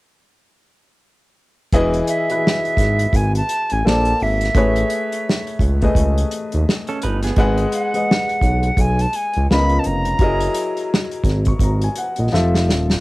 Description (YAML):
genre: R&B, neo-soul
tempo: 85 BPM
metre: 4/4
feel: swing 59% on 16ths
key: E major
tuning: A4 = 440 Hz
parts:
  - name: warm grand piano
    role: accompaniment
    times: 1.7-13.0 s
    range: C#3 to C#6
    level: -22 LUFS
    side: left 2 dB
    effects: none
  - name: smooth gliding synth bass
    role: bass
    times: 1.7-13.0 s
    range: D#1 to D#2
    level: -18 LUFS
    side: equal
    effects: none
  - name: unplugged drum kit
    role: drums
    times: 1.7-13.0 s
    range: hi-hat, kick drum, snare drum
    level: -19 LUFS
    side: equal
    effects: none
  - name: bright reedy concert flute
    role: melody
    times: 2.1-10.9 s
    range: E5 to B5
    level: -22 LUFS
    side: right 1 dB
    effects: cassette tape
  - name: semi-hollow electric guitar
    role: second line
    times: 6.9-7.6 s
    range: B3 to B4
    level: -27 LUFS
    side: right 4 dB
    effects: spring reverb, tape echo
room: moderate booth ambience, RT60 0.2 s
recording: home recording on cassette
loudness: -16 LUFS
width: side -20 dB against mid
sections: 1.7-13.0 A section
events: drum fill 12.3-13.0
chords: 1.7 Emaj7; 3.8 A#maj9; 4.5 Amaj9; 7.4 G#m7; 9.5 C#13; 10.2 F#13; 12.3 Fmaj7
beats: | 1.73 2.43 3.14 3.84 | 4.55 5.25 5.96 6.67 | 7.37 8.08 8.78 9.49 | 10.20 10.90 11.61 12.31